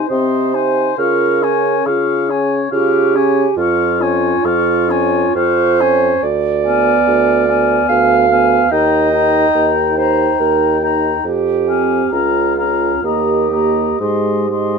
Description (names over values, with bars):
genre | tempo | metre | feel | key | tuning
classical, slow romantic movement for wind quintet | 60-73 BPM | 3/4 | rubato | unclear | A4 = 440 Hz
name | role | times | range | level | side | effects
mellow concert flute | melody | 0.0-14.8 s | Ab5 to Db6 | -21 LUFS | left 10 dB | none
mellow oboe | second line | 0.0-14.8 s | C5 to G5 | -21 LUFS | left 6 dB | none
dark clarinet | accompaniment | 0.0-14.8 s | F4 to F5 | -16 LUFS | right 7 dB | none
mellow French horn | accompaniment | 0.0-14.8 s | Ab3 to F4 | -21 LUFS | equal | none
mellow bassoon | bass | 0.1-14.8 s | Db2 to Db3 | -18 LUFS | right 1 dB | none
room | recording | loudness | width
light reverb | minimal, uncompressed stereo recording | -12 LUFS | side -5 dB against mid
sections
0.0-14.8 A section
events
none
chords
0.0 Ab/C; 1.0 Db; 3.6 Db/F; 6.2 Ddim7; 8.7 Eb; 11.3 Fm; 12.1 Bbm/Db; 13.0 Eb; 14.0 Ab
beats
0.10 | 0.99 1.86 2.72 | 3.58 4.45 5.36 | 6.24 7.07 7.90 | 8.72 9.55 10.40 | 11.25 12.13 13.05 | 14.01